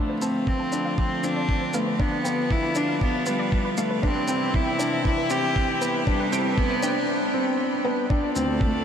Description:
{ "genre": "piano and strings electronica", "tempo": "118 BPM", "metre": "4/4", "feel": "straight", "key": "D dorian", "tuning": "A4 = 440 Hz", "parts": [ { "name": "rich cello", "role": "melody", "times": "0.0-8.8 s", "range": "G3 to G4", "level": "-26 LUFS", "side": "equal", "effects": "tape echo" }, { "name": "dark string quartet", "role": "sustained chords", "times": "0.0-8.8 s", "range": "C3 to D5", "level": "-31 LUFS", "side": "equal", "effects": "sidechain pumping" }, { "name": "felt-muted upright piano", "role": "riff", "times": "0.0-8.7 s", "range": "A3 to D4", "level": "-26 LUFS", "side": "left 1 dB", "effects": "tape echo" }, { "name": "analog pluck", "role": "arpeggios", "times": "0.1-6.9 s", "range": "B4 to D6", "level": "-35 LUFS", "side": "right 2 dB", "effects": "none" }, { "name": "shaker", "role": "drums", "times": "0.2-8.5 s", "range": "none", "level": "-39 LUFS", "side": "equal", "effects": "none" }, { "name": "electronic kick drum", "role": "drums", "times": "0.5-8.7 s", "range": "none", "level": "-24 LUFS", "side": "equal", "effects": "none" }, { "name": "dark studio cello section", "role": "bass", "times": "8.4-8.5 s", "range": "D2", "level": "-30 LUFS", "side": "right 1 dB", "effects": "sidechain pumping" } ], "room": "wet huge ambient reverb, RT60 8.4 s", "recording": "dreamy mix soaked in reverb", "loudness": "-21 LUFS", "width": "side -8 dB against mid", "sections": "0.0-8.1 A section", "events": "build-up 0.0-8.1", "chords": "0.0 Dm7; 2.0 G7; 4.0 Cmaj7; 6.1 Am7; 8.1 Dm7", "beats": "0.47 0.98 1.49 | 2.00 2.51 3.02 3.53 | 4.03 4.54 5.05 5.56 | 6.07 6.58 7.08 7.59 | 8.10 8.61" }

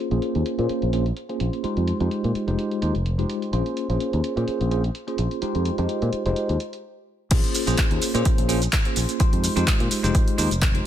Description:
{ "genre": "filtered disco house", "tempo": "127 BPM", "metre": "4/4", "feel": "swing 55% on 16ths", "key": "Bb dorian", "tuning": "A4 = 440 Hz", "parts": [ { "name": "bell-like tine electric piano", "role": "accompaniment", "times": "0.0-10.9 s", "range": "Ab3 to C5", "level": "-25 LUFS", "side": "equal", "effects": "medium stereo tremolo, phaser, sidechain pumping, low-pass filter" }, { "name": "modern bright fingered electric bass", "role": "bass", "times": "0.1-10.8 s", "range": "F1 to Bb2", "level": "-23 LUFS", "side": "equal", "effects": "sidechain pumping, low-pass filter" }, { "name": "punchy analog drum machine", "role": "drums", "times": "0.1-10.8 s", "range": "crash cymbal, handclaps, hi-hat, shaker", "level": "-29 LUFS", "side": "right 1 dB", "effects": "sidechain pumping on hats, low-pass filter on hats, sidechain pumping on cymbals, low-pass filter on cymbals, sidechain pumping on perc, low-pass filter on perc, low-pass filter on snare, low-pass filter on room" }, { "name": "electronic kick drum", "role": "drums", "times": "7.3-10.7 s", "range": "none", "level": "-21 LUFS", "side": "equal", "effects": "none" } ], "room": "light reverb", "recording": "none", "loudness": "-20 LUFS", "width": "side -11 dB against mid", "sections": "0.0-7.3 A section; 7.3-10.9 B section", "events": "filter sweep 0.0-7.3; stop 6.8-7.3; drop 7.3-10.9", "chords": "0.0 Bbm9; 1.6 Fm7; 3.5 Bbm9; 5.4 Fm7; 7.3 Bbm9; 9.2 Fm7", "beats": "0.23 0.70 1.17 | 1.64 2.12 2.59 3.06 | 3.53 4.00 4.48 4.95 | 5.42 5.89 6.37 6.84 | 7.31 7.78 8.26 8.73 | 9.20 9.67 10.15 10.62" }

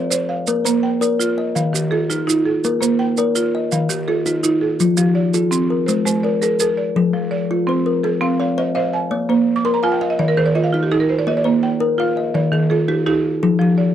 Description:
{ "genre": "southern african traditional, mbira-style interlocking cycle", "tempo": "111 BPM (dotted quarters)", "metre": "12/8", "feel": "straight", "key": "F equiheptatonic", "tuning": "A4 = 440 Hz", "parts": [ { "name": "buzzing marimba with medium hard mallets", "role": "arpeggios", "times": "0.0-13.9 s", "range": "Eb3+29c to D6-43c", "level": "-19 LUFS", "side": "right 4 dB", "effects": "none" }, { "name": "kalimba", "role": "arpeggios", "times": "0.0-13.9 s", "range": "Eb3+29c to F5", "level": "-18 LUFS", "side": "left 3 dB", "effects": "none" }, { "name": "maracas", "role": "percussion", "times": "0.1-6.8 s", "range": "none", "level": "-23 LUFS", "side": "right 8 dB", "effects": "none" } ], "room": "light reverb", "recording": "dry, close 1970s-style studio recording", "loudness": "-16 LUFS", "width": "side -10 dB against mid", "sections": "0.0-7.0 A section; 7.0-13.9 B section", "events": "marimba fill 9.4-11.3", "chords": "0.5 Bb; 1.6 Eb; 2.6 Bb; 3.7 Eb; 4.8 Fm; 5.9 Ab; 7.0 Fm; 8.0 Cm; 9.1 Bb; 10.2 Fm13/Eb; 11.3 Bb; 12.3 Eb; 13.4 Fm", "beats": "| 0.47 1.01 1.55 2.10 | 2.64 3.18 3.72 4.26 | 4.80 5.34 5.88 6.42 | 6.96 7.50 8.04 8.58 | 9.12 9.65 10.19 10.73 | 11.27 11.81 12.35 12.88 | 13.42" }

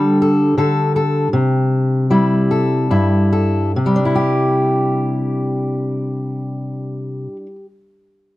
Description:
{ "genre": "folk", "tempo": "45-56 BPM (dotted quarters)", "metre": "6/8", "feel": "straight", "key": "C major", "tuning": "A4 = 440 Hz", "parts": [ { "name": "fingerpicked steel-string acoustic guitar", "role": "accompaniment", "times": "0.0-7.7 s", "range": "G2 to A4", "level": "-15 LUFS", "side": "left 1 dB", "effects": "none" } ], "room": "little or no reverb", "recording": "dry, close 1970s-style studio recording", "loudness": "-15 LUFS", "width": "side -16 dB against mid", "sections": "0.0-3.8 A section; 3.8-8.4 B section", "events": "slowing down 0.0-3.8", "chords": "0.0 Gsus2/D; 1.3 C; 3.8 Cadd9", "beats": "0.21 | 1.32 2.49 | 3.76 5.08 | 6.41" }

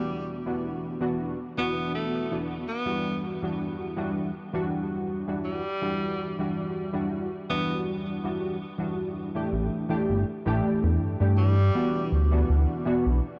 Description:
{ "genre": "vaporwave", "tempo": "81 BPM", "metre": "4/4", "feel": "swing 53% on 16ths", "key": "E minor", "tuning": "A4 = 439 Hz", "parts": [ { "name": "warm tenor saxophone", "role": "melody", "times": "0.0-12.2 s", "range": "G3 to B3", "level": "-36 LUFS", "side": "equal", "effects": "tape echo" }, { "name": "warbly lo-fi synth keys", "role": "accompaniment", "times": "0.0-13.2 s", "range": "E3 to G4", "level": "-30 LUFS", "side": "equal", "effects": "ensemble chorus, analog delay" }, { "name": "chorused synth bass", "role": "bass", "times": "9.5-13.2 s", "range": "G1 to G2", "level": "-24 LUFS", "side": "equal", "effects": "tube saturation" } ], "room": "moderate huge ambient reverb, RT60 8.1 s", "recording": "cassette tape", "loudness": "-28 LUFS", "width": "mono", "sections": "0.0-9.5 A section; 9.5-13.4 B section", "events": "none", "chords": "0.3 D69; 3.2 Em9; 9.5 A7sus4; 12.1 D69", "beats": "| 0.64 1.38 2.12 2.86 | 3.60 4.34 5.08 5.82 | 6.56 7.30 8.05 8.79 | 9.53 10.27 11.01 11.75 | 12.49" }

